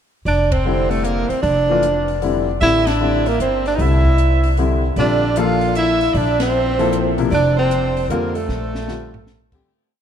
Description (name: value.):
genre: modal jazz.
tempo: 153 BPM.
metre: 3/4.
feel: swing 65% on 8ths.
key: F major.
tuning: A4 = 442 Hz.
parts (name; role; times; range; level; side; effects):
breathy tenor saxophone; melody; 0.3-9.5 s; A3 to F4; -19 LUFS; right 1 dB; none.
growling alto saxophone; second line; 0.3-9.5 s; A4 to F5; -23 LUFS; right 4 dB; none.
upright bass; bass; 0.3-9.6 s; F1 to F2; -20 LUFS; equal; none.
compact cocktail drum kit; drums; 0.3-9.6 s; crash cymbal, hi-hat, kick drum, ride cymbal, snare drum, toms; -31 LUFS; left 1 dB; none.
warm grand piano; accompaniment; 0.7-9.7 s; C3 to A4; -22 LUFS; left 6 dB; none.
room: moderate cathedral reverb, RT60 5.7 s.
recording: in a vast, echoing space.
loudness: -15 LUFS.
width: side -8 dB against mid.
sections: 0.3-9.7 A section.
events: band accent 0.5, 2.8, 6.3; fade-out 7.8-9.7; drum fill 8.5-9.3.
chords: 0.3 Fmaj9; 5.0 Bbmaj9.